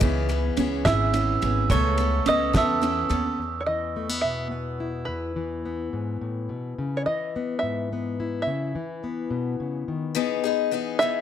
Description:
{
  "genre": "indie folk with a building arrangement",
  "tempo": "71 BPM (dotted quarters)",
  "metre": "6/8",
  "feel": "straight",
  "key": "E major",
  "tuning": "A4 = 441 Hz",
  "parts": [
    { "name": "picked acoustic archtop guitar", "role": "accompaniment", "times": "0.0-3.4, 10.1-11.2 s", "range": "C#3 to A4", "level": "-27 LUFS", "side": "left 10 dB", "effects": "none" },
    { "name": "warm upright piano", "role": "arpeggios", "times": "0.0-3.4 s", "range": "E3 to A4", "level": "-28 LUFS", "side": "right 6 dB", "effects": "analog delay" },
    { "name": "upright bass", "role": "bass", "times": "0.0-3.4 s", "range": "G#1 to E2", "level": "-26 LUFS", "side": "equal", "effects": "none" },
    { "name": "cloth-damped thuddy drum kit", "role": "drums", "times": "0.0-3.2 s", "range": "kick drum, ride cymbal, snare drum", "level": "-28 LUFS", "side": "equal", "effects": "none" },
    { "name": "open-back banjo", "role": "melody", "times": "0.8-11.2 s", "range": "B4 to E5", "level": "-27 LUFS", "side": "right 1 dB", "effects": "none" },
    { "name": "glockenspiel with soft plastic mallets", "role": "second line", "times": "0.9-3.2 s", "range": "C#6 to E6", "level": "-28 LUFS", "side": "right 8 dB", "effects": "none" },
    { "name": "fingerpicked plugged-in steel-string acoustic guitar", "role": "accompaniment", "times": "3.4-11.2 s", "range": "E2 to E4", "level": "-29 LUFS", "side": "left 3 dB", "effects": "none" }
  ],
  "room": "light reverb, small room ambience",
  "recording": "none",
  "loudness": "-23 LUFS",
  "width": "side -9 dB against mid",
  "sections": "0.0-3.4 A section; 3.4-10.2 B section; 10.2-11.2 A section",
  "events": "none",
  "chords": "0.0 C#m7; 1.7 Aadd9/C#; 3.4 E5; 6.8 C#m7; 8.5 Badd11; 10.2 Emaj7"
}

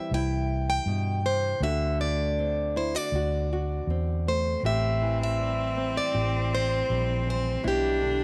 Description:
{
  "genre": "acoustic folk-pop ballad",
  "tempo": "80 BPM",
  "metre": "4/4",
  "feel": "straight",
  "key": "A dorian",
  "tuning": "A4 = 440 Hz",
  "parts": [
    { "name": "picked plugged-in acoustic archtop guitar", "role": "melody", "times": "0.0-8.2 s", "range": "G4 to G5", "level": "-31 LUFS", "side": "equal", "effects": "none" },
    { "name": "nylon-string guitar", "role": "accompaniment", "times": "0.0-8.2 s", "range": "A2 to G4", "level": "-36 LUFS", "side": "equal", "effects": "none" },
    { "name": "vintage muted fingered electric bass", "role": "bass", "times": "0.1-8.2 s", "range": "A1 to G2", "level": "-31 LUFS", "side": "equal", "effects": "none" },
    { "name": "warm cello", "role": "second line", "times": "4.6-8.2 s", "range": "C4 to D4", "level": "-35 LUFS", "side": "equal", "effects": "none" }
  ],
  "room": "light reverb",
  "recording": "none",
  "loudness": "-27 LUFS",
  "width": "mono",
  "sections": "0.0-8.2 A section",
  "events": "none",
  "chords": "0.0 C; 1.6 D7; 4.6 Am7; 7.6 G6/B"
}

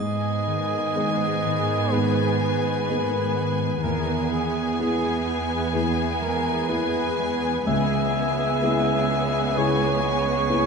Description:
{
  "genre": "cinematic",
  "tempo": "63 BPM",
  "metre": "4/4",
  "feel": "rubato",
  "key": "G# minor",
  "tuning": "A4 = 440 Hz",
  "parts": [
    { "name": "rich chamber violin section", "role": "melody", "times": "0.0-10.7 s", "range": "G#5", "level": "-32 LUFS", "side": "left 5 dB", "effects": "none" },
    { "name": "mellow cor anglais", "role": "second line", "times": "0.0-10.7 s", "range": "G#4 to E5", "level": "-27 LUFS", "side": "right 2 dB", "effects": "none" },
    { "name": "rich symphonic violin section", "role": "second line", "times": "0.0-10.7 s", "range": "G#4", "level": "-32 LUFS", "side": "left 4 dB", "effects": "none" },
    { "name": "dark grand piano", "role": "accompaniment", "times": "0.0-10.7 s", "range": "C#2 to G#4", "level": "-30 LUFS", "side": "left 2 dB", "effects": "none" },
    { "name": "rich symphonic viola section", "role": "accompaniment", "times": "0.0-10.7 s", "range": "B3", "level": "-30 LUFS", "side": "right 3 dB", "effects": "none" },
    { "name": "concert harp", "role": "arpeggios", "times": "0.0-10.7 s", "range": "G#2 to E4", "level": "-30 LUFS", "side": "left 7 dB", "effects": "none" },
    { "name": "rich symphonic cello section", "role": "bass", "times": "0.0-10.7 s", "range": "C#2 to G#2", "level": "-27 LUFS", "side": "right 4 dB", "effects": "none" }
  ],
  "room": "moderate concert hall reverb, RT60 1.8 s",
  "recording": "dark, warm production, nothing above 11.0 kHz",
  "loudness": "-21 LUFS",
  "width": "side -5 dB against mid",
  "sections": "0.0-10.7 A section",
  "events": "none",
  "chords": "0.0 G#m; 3.8 E; 7.7 C#m7"
}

